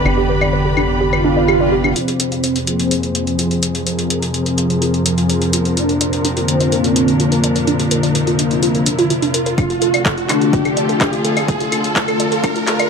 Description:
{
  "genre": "melodic techno",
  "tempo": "126 BPM",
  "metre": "4/4",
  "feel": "straight",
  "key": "F dorian",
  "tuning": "A4 = 439 Hz",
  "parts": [
    { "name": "clear symphonic string section", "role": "sustained chords", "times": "0.0-12.9 s", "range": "D2 to B5", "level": "-24 LUFS", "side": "equal", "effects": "vintage 12-bit sampler grit, sidechain pumping, low-pass filter" },
    { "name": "warbly dusty pluck", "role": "arpeggios", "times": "0.0-12.9 s", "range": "D4 to F5", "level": "-22 LUFS", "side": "right 2 dB", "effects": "chorus, sidechain pumping, digital delay" },
    { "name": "brassy analog pad", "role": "stabs", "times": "0.0-12.9 s", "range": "D3 to Ab4", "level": "-19 LUFS", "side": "left 2 dB", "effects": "chorus, sidechain pumping, digital delay" },
    { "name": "tight sequencer bass", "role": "bass", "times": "0.0-1.9 s", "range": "G1", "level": "-22 LUFS", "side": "equal", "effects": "sidechain pumping" },
    { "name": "analog drone", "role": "drone", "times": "0.0-12.9 s", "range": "F2 to C3", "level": "-24 LUFS", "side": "equal", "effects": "chorus, sidechain pumping" },
    { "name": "techno drum kit", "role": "drums", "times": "0.1-12.9 s", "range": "claves, handclaps, hi-hat", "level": "-21 LUFS", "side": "left 2 dB", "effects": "low-pass filter on perc, low-pass filter on hats, low-pass filter on snare, low-pass filter on room" },
    { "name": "swell and riser", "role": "sound effects", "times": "1.2-12.9 s", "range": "none", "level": "-23 LUFS", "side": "right 2 dB", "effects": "none" },
    { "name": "mellow synth brass", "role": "melody", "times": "2.0-11.2 s", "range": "Bb3 to F4", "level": "-23 LUFS", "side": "equal", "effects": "chorus, phaser, vintage 12-bit sampler grit, sidechain pumping, digital delay" },
    { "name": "electronic kick drum", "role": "drums", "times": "9.6-12.5 s", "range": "none", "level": "-21 LUFS", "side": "equal", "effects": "none" }
  ],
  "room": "light reverb, digital ambience",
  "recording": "high-pass filter",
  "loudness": "-14 LUFS",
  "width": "side -5 dB against mid",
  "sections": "0.0-2.0 A section; 2.0-12.9 B section",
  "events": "filter sweep on synth arpeggio sound 0.0-2.0; swell 1.2-2.0; build-up 2.0-12.9; riser 2.0-12.9; filter sweep on analog polysynth 2.0-12.9; filter sweep on analog synth pad 2.0-12.9; filter sweep on string section 2.0-12.9",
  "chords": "0.0 G; 2.0 Fm; 5.8 Bb; 9.6 Dm"
}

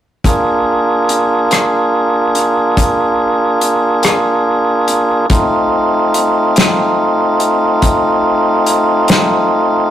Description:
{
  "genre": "slow blues",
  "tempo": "48 BPM (dotted quarters)",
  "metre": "12/8",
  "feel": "straight",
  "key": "Bb mixolydian",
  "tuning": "A4 = 440 Hz",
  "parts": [
    { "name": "tonewheel organ", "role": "sustained chords", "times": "0.2-9.9 s", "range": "A3 to Ab4", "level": "-11 LUFS", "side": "equal", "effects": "overdrive" },
    { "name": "warm soul drum kit", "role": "drums", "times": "0.2-9.3 s", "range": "hi-hat, kick drum, rim click, snare drum", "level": "-14 LUFS", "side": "left 1 dB", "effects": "none" }
  ],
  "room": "moderate stone room reverb, RT60 1.4 s",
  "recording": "rough rehearsal-room recording, warm saturation",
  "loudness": "-10 LUFS",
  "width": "side -11 dB against mid",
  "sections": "0.2-9.9 A section",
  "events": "none",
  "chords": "0.2 Bb7; 5.3 F7"
}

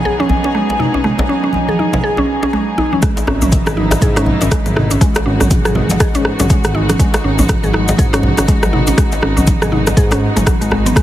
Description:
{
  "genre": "afro house",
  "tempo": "121 BPM",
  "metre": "4/4",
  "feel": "swing 59% on 16ths",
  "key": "G# minor",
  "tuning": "A4 = 440 Hz",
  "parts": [
    { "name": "dark studio string section", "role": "sustained chords", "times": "0.0-11.0 s", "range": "E3 to G#4", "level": "-22 LUFS", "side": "left 1 dB", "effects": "sidechain pumping" },
    { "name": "mallet-like synth pluck", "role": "arpeggios", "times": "0.1-11.0 s", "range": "F#3 to G#4", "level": "-18 LUFS", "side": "equal", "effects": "chorus, cassette tape, sidechain pumping, dub echo" },
    { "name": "djembe", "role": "percussion", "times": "0.1-11.0 s", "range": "none", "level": "-21 LUFS", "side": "equal", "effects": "none" },
    { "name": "congas", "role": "percussion", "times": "0.2-11.0 s", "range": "none", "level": "-22 LUFS", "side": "right 1 dB", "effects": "none" },
    { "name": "deep house drum kit", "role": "drums", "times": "3.0-11.0 s", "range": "hi-hat, rim click, toms", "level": "-19 LUFS", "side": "equal", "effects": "overdrive, studio reverb" },
    { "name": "electronic kick drum", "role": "drums", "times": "3.0-11.0 s", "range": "none", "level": "-15 LUFS", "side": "equal", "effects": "overdrive, studio reverb" },
    { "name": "cabasa", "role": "percussion", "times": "3.0-11.0 s", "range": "none", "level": "-28 LUFS", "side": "left 6 dB", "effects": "none" },
    { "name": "smooth synth bass", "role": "bass", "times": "3.3-10.9 s", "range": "G#1 to G#2", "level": "-18 LUFS", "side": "equal", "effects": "sidechain pumping" }
  ],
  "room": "light reverb, small room ambience",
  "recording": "heavily compressed radio sound",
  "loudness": "-11 LUFS",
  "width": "side -13 dB against mid",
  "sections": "0.0-3.0 A section; 3.0-11.0 B section",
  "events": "drop 3.0-11.0",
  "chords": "0.0 G#m7; 3.0 Emaj7/G#; 5.0 F#9sus4/G#; 7.0 G#m7"
}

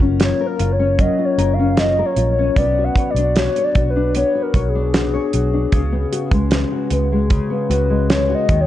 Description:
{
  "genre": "indie pop, bedroom pop",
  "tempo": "76 BPM",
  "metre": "4/4",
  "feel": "straight",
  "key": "unclear",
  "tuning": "A4 = 440 Hz",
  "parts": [
    { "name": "nylon-string guitar", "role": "accompaniment", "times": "0.0-8.7 s", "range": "C#3 to C#5", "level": "-20 LUFS", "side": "left 3 dB", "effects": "analog chorus, warbly pitch drift" },
    { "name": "vintage muted fingered electric bass", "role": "bass", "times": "0.0-8.7 s", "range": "F#1 to D#2", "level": "-20 LUFS", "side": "right 1 dB", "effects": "none" },
    { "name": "damped 70s drum kit", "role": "drums", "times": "0.0-8.7 s", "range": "hi-hat, kick drum, snare drum", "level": "-19 LUFS", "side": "right 1 dB", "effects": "vintage 12-bit sampler grit" },
    { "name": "warbly nostalgic lead", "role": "melody", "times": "0.2-8.7 s", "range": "G#4 to F#5", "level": "-20 LUFS", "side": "left 2 dB", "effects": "wide subtle chorus, analog delay" }
  ],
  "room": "light reverb, small room ambience",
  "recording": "none",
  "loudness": "-15 LUFS",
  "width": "side -13 dB against mid",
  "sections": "0.0-8.7 A section",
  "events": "soft synth lead solo 0.0-8.7",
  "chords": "0.0 F#maj7; 2.6 Bmadd9; 5.7 C#7sus4"
}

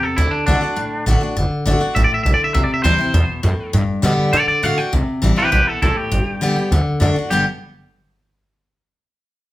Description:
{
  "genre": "rockabilly",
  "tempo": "202 BPM",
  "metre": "4/4",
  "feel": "straight",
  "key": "G major",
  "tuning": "A4 = 441 Hz",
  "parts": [
    { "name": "twangy electric guitar", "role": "melody", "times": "0.0-7.4 s", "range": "D4 to G5", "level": "-19 LUFS", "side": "right 1 dB", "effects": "none" },
    { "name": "picked steel-string acoustic guitar", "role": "accompaniment", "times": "0.0-7.4 s", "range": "G2 to G4", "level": "-20 LUFS", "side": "left 1 dB", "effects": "none" },
    { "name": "upright bass", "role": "bass", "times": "0.0-7.4 s", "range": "F#1 to D3", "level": "-18 LUFS", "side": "equal", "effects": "none" }
  ],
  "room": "light reverb",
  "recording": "band playing live in one room",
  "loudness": "-15 LUFS",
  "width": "side -16 dB against mid",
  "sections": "0.0-4.9 A section; 4.9-7.3 B section; 7.3-8.5 C section",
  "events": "none",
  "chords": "0.2 D; 2.6 C; 3.7 G; 4.3 D; 4.9 C; 6.1 G; 6.7 D; 7.3 G"
}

